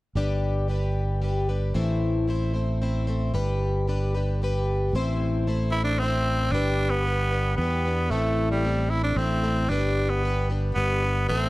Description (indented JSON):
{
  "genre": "folk rock and heartland rock",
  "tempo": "113 BPM",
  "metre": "3/4",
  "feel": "straight",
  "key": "G major",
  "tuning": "A4 = 440 Hz",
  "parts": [
    { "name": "picked plugged-in twelve-string acoustic guitar", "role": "accompaniment", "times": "0.2-11.5 s", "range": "A2 to C5", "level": "-29 LUFS", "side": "left 2 dB", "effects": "none" },
    { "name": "fingered electric bass", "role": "bass", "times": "0.2-11.5 s", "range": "G1 to E2", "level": "-25 LUFS", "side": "equal", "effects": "none" },
    { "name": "growling tenor saxophone", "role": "melody", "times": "5.7-11.5 s", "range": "G3 to E4", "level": "-26 LUFS", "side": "right 1 dB", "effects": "none" }
  ],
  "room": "light reverb, small room ambience",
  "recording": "dark, warm production",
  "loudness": "-22 LUFS",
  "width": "side -19 dB against mid",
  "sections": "0.2-6.5 A section; 6.5-11.5 B section",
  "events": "none",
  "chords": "0.2 G; 1.7 Am; 3.3 G; 4.9 Am; 6.5 G; 8.1 Am; 9.7 G"
}